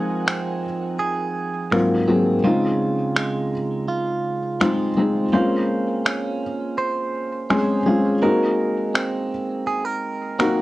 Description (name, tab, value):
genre	contemporary R&B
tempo	83 BPM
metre	4/4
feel	straight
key	Bb minor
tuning	A4 = 440 Hz
part	felt-muted upright piano	accompaniment	0.0-10.6 s	Gb3 to Ab4	-21 LUFS	left 2 dB	cassette tape
part	direct-recorded clean electric guitar	arpeggios	0.0-10.6 s	Ab2 to C5	-24 LUFS	right 3 dB	cassette tape
part	electronic finger snaps	drums	0.3-10.6 s	none	-22 LUFS	equal	cassette tape
room	light reverb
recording	home recording on cassette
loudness	-19 LUFS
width	side -17 dB against mid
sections	0.0-10.6 A section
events	break 0.0-10.6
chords	0.0 Fm7; 1.7 Ab13; 2.4 Dbmaj7; 5.3 Bbm9; 8.2 Ab9